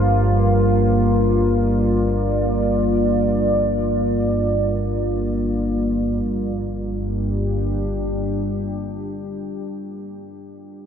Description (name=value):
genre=dark ambient drone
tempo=free time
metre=none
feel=none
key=G minor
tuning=A4 = 444 Hz
part: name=deep dark ambient pad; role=sustained chords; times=0.0-9.7 s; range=G2 to D5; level=-20 LUFS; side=equal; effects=chorus, built-in reverb
part: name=deep rumbling drone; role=drone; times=0.0-9.4 s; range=G1 to G2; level=-23 LUFS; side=equal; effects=built-in reverb
part: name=bronze singing bowl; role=texture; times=0.0-6.3 s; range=none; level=barely audible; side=none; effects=none
room=wet huge ambient reverb, RT60 7.7 s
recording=none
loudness=-18 LUFS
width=side -8 dB against mid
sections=0.0-6.2 A section; 6.2-10.5 B section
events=none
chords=0.0 Bb/G; 6.2 G5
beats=free time